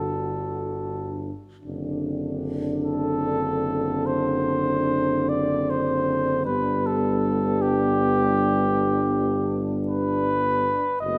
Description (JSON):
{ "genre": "classical, hymn-like piece for brass band", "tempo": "48-54 BPM (dotted quarters)", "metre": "12/8", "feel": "rubato", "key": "G major", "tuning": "A4 = 441 Hz", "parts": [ { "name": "mellow cornet", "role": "melody", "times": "0.0-11.2 s", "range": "G4 to D#5", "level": "-28 LUFS", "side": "equal", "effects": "none" }, { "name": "warm French horn section", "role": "second line", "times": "0.0-11.2 s", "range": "D4 to F#4", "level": "-33 LUFS", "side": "equal", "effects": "none" }, { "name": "dark euphonium", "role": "accompaniment", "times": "0.0-11.2 s", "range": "B3 to D4", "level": "-32 LUFS", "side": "equal", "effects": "none" }, { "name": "dark euphonium", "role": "accompaniment", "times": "0.0-11.2 s", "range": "D3 to A3", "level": "-32 LUFS", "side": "equal", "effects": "none" }, { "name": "mellow tuba", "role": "bass", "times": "0.0-11.2 s", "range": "F#1 to G1", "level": "-33 LUFS", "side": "equal", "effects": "none" } ], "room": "moderate scoring stage reverb, RT60 1.6 s", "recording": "none", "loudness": "-24 LUFS", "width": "mono", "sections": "0.0-11.2 A section", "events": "none", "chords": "0.0 D/G; 1.6 D7/F#; 6.5 G" }